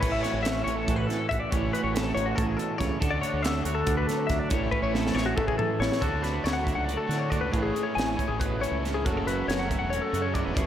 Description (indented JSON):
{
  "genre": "math rock and midwest emo",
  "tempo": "280 BPM (eighths)",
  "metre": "7/8",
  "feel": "straight",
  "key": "A major",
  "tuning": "A4 = 441 Hz",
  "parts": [
    { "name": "twangy electric guitar", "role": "accompaniment", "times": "0.0-10.7 s", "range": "F#2 to C#5", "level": "-33 LUFS", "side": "right 6 dB", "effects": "none" },
    { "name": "direct-recorded clean electric guitar", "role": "arpeggios", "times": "0.0-10.7 s", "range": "F#4 to G#5", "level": "-29 LUFS", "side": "left 4 dB", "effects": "analog chorus" },
    { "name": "crunchy overdriven guitar", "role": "riff", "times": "0.0-10.7 s", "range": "A2 to F#4", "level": "-32 LUFS", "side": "right 1 dB", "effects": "slapback echo" },
    { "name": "growling fingered electric bass", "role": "bass", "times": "0.0-10.7 s", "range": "E1 to D3", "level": "-32 LUFS", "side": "equal", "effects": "overdrive" },
    { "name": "crisp fusion drum kit", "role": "drums", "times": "0.0-10.7 s", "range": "crash cymbal, hi-hat, kick drum, snare drum, toms", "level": "-30 LUFS", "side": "equal", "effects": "none" }
  ],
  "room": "moderate lush hall reverb, RT60 1.7 s, studio reverb",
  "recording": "big arena sound",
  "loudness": "-24 LUFS",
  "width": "side -10 dB against mid",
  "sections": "0.0-6.0 A section; 6.0-10.7 B section",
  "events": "drum fill 4.7-6.0",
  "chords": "0.0 A69; 3.0 Dmaj7; 4.5 Amaj7; 6.0 Dmaj7; 7.5 Amaj7; 9.0 F#m7"
}